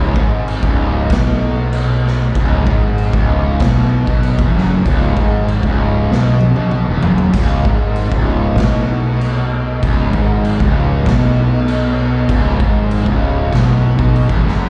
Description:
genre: stoner and doom metal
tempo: 97 BPM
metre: 4/4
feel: straight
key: C# minor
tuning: A4 = 440 Hz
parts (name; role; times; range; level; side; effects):
- fuzz guitar; riff; 0.0-14.7 s; C#2 to B2; -19 LUFS; equal; distortion, slapback echo
- fuzz fingered electric bass; bass; 0.0-14.7 s; C#1 to B1; -19 LUFS; equal; overdrive
- raw garage drum kit; drums; 0.2-14.5 s; crash cymbal, kick drum, snare drum, splash cymbal, toms; -20 LUFS; equal; none
room: small room ambience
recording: live gig heard through the venue's PA, club reverb, nothing above 10.3 kHz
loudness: -15 LUFS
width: mono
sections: 0.0-14.7 A section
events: drum fill 6.1-7.4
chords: 0.0 C#5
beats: 0.48 1.11 1.73 | 2.36 2.99 3.61 4.24 | 4.86 5.49 6.11 6.73 | 7.35 7.97 8.59 9.21 | 9.83 10.45 11.06 11.68 | 12.30 12.91 13.53 14.15

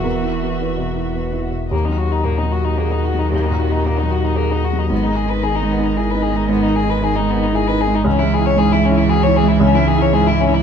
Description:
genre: neoclassical piano and strings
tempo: 114 BPM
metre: 3/4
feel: rubato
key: unclear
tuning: A4 = 440 Hz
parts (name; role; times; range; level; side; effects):
- muted violin; melody; 0.0-10.6 s; A#3 to C#5; -21 LUFS; left 6 dB; none
- muted cello; second line; 0.0-10.6 s; D#3 to E3; -23 LUFS; right 8 dB; none
- felt-muted upright piano; accompaniment; 0.0-10.6 s; C#2 to B4; -19 LUFS; right 2 dB; none
- muted chamber string section; sustained chords; 0.0-10.6 s; A#3 to E5; -28 LUFS; left 2 dB; none
- sub bass with octave; bass; 0.0-10.6 s; E1 to D#2; -21 LUFS; left 1 dB; none
room: light reverb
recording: minimal, uncompressed stereo recording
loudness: -15 LUFS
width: side -7 dB against mid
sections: 0.0-1.7 A section; 1.7-10.6 B section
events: none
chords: 0.0 Esus2; 1.7 D#m; 4.9 G#m; 8.1 C#m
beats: | 0.05 0.61 1.17 | 1.72 2.26 2.79 | 3.32 3.85 4.38 | 4.91 5.44 5.97 | 6.49 7.01 7.53 | 8.05 8.58 9.10 | 9.62 10.14

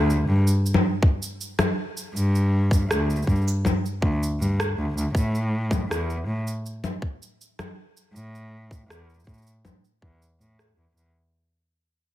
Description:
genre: folktronica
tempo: 80 BPM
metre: 4/4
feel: straight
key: unclear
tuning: A4 = 440 Hz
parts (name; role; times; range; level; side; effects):
- rich cello; bass; 0.0-11.1 s; D2 to A2; -23 LUFS; equal; none
- electronic cabasa, congas and rim click; drums; 0.1-11.1 s; none; -26 LUFS; left 1 dB; overdrive
- electronic kick drum; drums; 1.0-10.2 s; none; -22 LUFS; equal; overdrive
room: little or no reverb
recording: none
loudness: -22 LUFS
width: side -14 dB against mid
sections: 0.0-11.1 A section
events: fade-out 0.0-11.1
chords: none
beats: 0.64 1.39 | 2.14 2.89 3.64 4.39 | 5.14 5.89 6.64 7.39 | 8.14 8.89 9.64 10.39

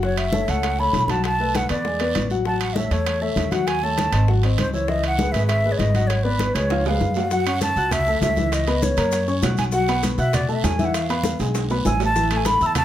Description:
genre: Afro-Cuban jazz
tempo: 198 BPM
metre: 4/4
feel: straight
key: C# minor, F# minor from 7.3 s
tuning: A4 = 441 Hz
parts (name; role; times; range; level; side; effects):
- breathy mellow silver concert flute; melody; 0.0-12.8 s; B4 to B5; -23 LUFS; right 1 dB; plate reverb
- warm upright piano; accompaniment; 0.0-12.8 s; E3 to F#6; -25 LUFS; left 4 dB; none
- upright bass; bass; 0.0-12.8 s; F#1 to B2; -23 LUFS; right 1 dB; none
- bongos; percussion; 0.0-12.8 s; none; -33 LUFS; left 6 dB; none
- congas; percussion; 0.0-12.8 s; none; -28 LUFS; left 1 dB; none
- guiro; percussion; 0.0-12.8 s; none; -37 LUFS; right 6 dB; none
- timbales; percussion; 0.2-12.8 s; none; -30 LUFS; right 5 dB; none
- maracas; percussion; 7.3-12.8 s; none; -37 LUFS; left 5 dB; none
room: moderate studio ambience, RT60 0.5 s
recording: none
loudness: -18 LUFS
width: side -12 dB against mid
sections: 0.0-7.3 A section; 7.3-12.8 B section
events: drum fill 6.7-7.3, 11.4-12.2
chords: 0.0 F#m7; 1.2 Bm7; 1.8 E9; 2.5 A6; 3.7 D#m7b5; 4.3 G#7b13; 4.9 C#m9; 6.1 G#m7b5; 6.7 C#7; 7.3 F#m7; 8.5 C#m7; 9.1 F#; 9.7 B5; 10.9 E; 12.2 A5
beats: | 0.03 0.33 0.63 0.94 | 1.24 1.54 1.85 2.15 | 2.46 2.76 3.06 3.37 | 3.67 3.97 4.28 4.58 | 4.88 5.19 5.49 5.79 | 6.10 6.40 6.70 7.00 | 7.31 7.61 7.91 8.22 | 8.52 8.82 9.12 9.43 | 9.73 10.03 10.34 10.64 | 10.94 11.24 11.55 11.85 | 12.15 12.45 12.76

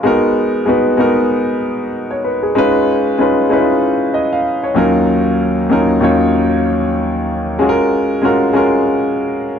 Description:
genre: soul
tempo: 95 BPM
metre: 4/4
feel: swing 58% on 16ths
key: G# dorian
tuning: A4 = 440 Hz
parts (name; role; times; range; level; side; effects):
- warm grand piano; solo; 0.0-9.6 s; D#2 to E#5; -12 LUFS; equal; none
room: light reverb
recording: dark, warm production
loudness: -12 LUFS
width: side -8 dB against mid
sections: 0.0-9.6 A section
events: none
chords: 0.0 G#m7; 2.6 C#7; 4.8 D#m9; 7.6 F#maj7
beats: | 0.04 0.67 1.30 1.93 | 2.56 3.19 3.82 4.45 | 5.08 5.71 6.34 6.97 | 7.60 8.23 8.86 9.49

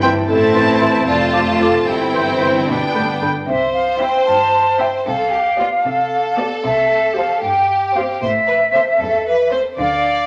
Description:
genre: cinematic, playful, whimsical film cue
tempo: 76 BPM (dotted quarters)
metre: 6/8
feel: straight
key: C major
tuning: A4 = 440 Hz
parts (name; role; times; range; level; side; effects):
- marimba with soft mallets; melody; 0.0-3.2 s; G4 to E5; -23 LUFS; equal; none
- rich chamber violin section; melody; 0.0-9.7 s; C5 to A5; -26 LUFS; equal; none
- clear chamber violin section; second line; 0.0-10.3 s; D4 to D5; -23 LUFS; equal; none
- clear clarinet; second line; 0.0-3.1 s; C4 to E4; -30 LUFS; equal; none
- mellow silver concert flute; second line; 0.0-10.3 s; E5 to D6; -20 LUFS; equal; none
- warm oboe; second line; 0.0-3.3 s; G5 to A5; -29 LUFS; equal; none
- dark bassoon; accompaniment; 0.0-3.3 s; D3 to F3; -26 LUFS; equal; none
- rich chamber viola section; accompaniment; 0.0-9.7 s; A3 to A4; -26 LUFS; equal; none
- dark French horn section; sustained chords; 0.0-3.2 s; G3 to F4; -25 LUFS; equal; none
- clear chamber cello section; bass; 0.0-10.3 s; E2 to D3; -29 LUFS; equal; none
- dark tuba; bass; 0.0-3.2 s; F1 to A1; -30 LUFS; equal; none
- rich chamber double bass section; bass; 0.0-10.3 s; F1 to D2; -33 LUFS; equal; none
room: wet stone room reverb, RT60 1.0 s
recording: none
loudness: -16 LUFS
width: mono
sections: 0.0-3.5 A section; 3.5-10.3 B section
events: none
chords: 0.3 Am; 1.1 Dm/F; 1.9 C/G; 2.7 G; 3.5 C; 5.1 G7/C; 6.6 C; 8.2 Am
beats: | 0.28 1.08 | 1.88 2.67 | 3.48 4.27 | 5.06 5.85 | 6.63 7.42 | 8.21 8.99 | 9.78

